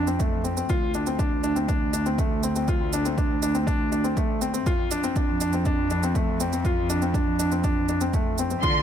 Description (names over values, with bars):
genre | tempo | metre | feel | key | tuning
piano and strings electronica | 121 BPM | 4/4 | straight | unclear | A4 = 440 Hz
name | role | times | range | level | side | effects
warm baby grand piano | riff | 0.0-8.8 s | A3 to F4 | -26 LUFS | left 1 dB | ping-pong delay
warm studio cello section | bass | 0.0-8.8 s | D2 to F2 | -28 LUFS | equal | sidechain pumping
shaker | drums | 0.1-8.7 s | none | -35 LUFS | right 13 dB | none
electronic kick drum | drums | 0.2-8.7 s | none | -26 LUFS | equal | none
dark studio violin section | melody | 8.6-8.8 s | C6 | -22 LUFS | right 2 dB | none
clear symphonic string section | sustained chords | 8.6-8.8 s | D3 | -27 LUFS | equal | sidechain pumping
room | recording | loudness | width
light reverb, small room ambience | none | -22 LUFS | side -9 dB against mid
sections
0.0-8.8 A section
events
none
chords
0.0 F; 0.7 D7(no3); 4.7 F5